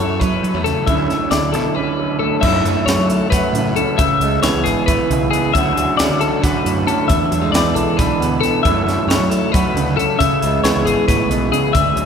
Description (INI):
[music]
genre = math rock and midwest emo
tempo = 270 BPM (eighths)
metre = 7/8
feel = straight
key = unclear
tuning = A4 = 443 Hz
[part]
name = electric guitar at the edge of break-up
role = accompaniment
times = 0.0-12.1 s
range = D2 to F#4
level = -18 LUFS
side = right 4 dB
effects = none
[part]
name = twelve-string electric guitar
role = arpeggios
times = 0.0-12.1 s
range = G#4 to E5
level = -19 LUFS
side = left 6 dB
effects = none
[part]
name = fuzz fingered electric bass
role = bass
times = 0.0-12.1 s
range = G#1 to F#3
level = -22 LUFS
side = equal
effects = overdrive
[part]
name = crisp fusion drum kit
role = drums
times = 0.0-12.1 s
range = crash cymbal, hi-hat, kick drum, snare drum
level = -22 LUFS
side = equal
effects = none
[sound]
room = wet cathedral reverb, RT60 5.8 s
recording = recorded in a church or concert hall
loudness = -14 LUFS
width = side -7 dB against mid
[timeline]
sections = 0.0-2.4 A section; 2.4-12.1 B section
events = none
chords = 0.0 F#m7; 0.9 Dmaj9; 2.4 F#m7; 4.0 C#m7; 5.5 Dmaj7; 7.1 E7; 8.6 F#m7; 10.2 C#m7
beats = 0.20 0.42 0.64 | 0.87 1.09 1.31 1.53 1.76 1.98 2.20 | 2.42 2.65 2.87 3.09 3.31 3.53 3.75 | 3.98 4.20 4.42 4.64 4.86 5.09 5.31 | 5.53 5.75 5.97 6.20 6.42 6.64 6.86 | 7.08 7.31 7.53 7.75 7.97 8.19 8.41 | 8.64 8.86 9.08 9.30 9.52 9.75 9.97 | 10.19 10.41 10.63 10.85 11.07 11.29 11.52 | 11.74 11.96